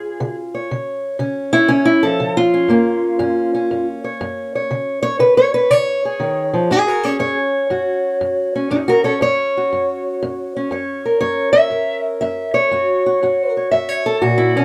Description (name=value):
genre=acoustic country blues, solo or duo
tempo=120 BPM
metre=4/4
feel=swing 68% on 8ths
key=F# major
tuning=A4 = 439 Hz
part: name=fingerpicked steel-string acoustic guitar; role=solo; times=0.0-14.6 s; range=F#2 to E5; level=-17 LUFS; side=equal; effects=none
room=light reverb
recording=dry, close 1970s-style studio recording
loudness=-17 LUFS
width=mono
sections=0.0-6.7 A section; 6.7-14.6 B section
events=steel-string acoustic guitar solo 0.0-6.7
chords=0.0 C#; 2.7 F#; 4.7 C#5; 6.7 F#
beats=0.20 | 0.69 1.20 1.70 2.20 | 2.70 3.20 3.70 4.20 | 4.70 5.20 5.70 6.20 | 6.70 7.20 7.70 8.21 | 8.71 9.21 9.71 10.21 | 10.71 11.21 11.71 12.21 | 12.72 13.22 13.72 14.22